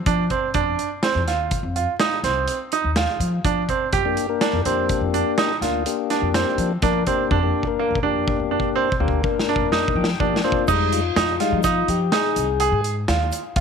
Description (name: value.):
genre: progressive instrumental, band music in an uneven meter.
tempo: 124 BPM.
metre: 7/4.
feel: straight.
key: F dorian.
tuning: A4 = 440 Hz.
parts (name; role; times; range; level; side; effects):
upright bass; bass; 0.0-13.6 s; C2 to F3; -24 LUFS; left 1 dB; none.
bright grand piano; arpeggios; 0.1-13.6 s; Bb3 to Ab4; -22 LUFS; right 8 dB; none.
big rock drum kit; drums; 0.1-13.6 s; crash cymbal, hi-hat, kick drum, snare drum; -26 LUFS; left 1 dB; none.
tonewheel organ; accompaniment; 4.1-12.8 s; G3 to G5; -24 LUFS; left 15 dB; stopped rotary speaker.
egg shaker; percussion; 10.7-13.5 s; none; -37 LUFS; left 20 dB; none.
room: moderate spring reverb, RT60 2.1 s.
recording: 1960s-style stereo with parts hard left and right.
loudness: -18 LUFS.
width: side -6 dB against mid.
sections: 0.0-10.7 A section; 10.7-13.6 B section.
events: drum fill 7.3-10.7; tonewheel organ fill 9.7-10.7; tonewheel organ solo 10.7-13.6.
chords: 0.0 F5; 3.9 Gm; 10.7 Fm7.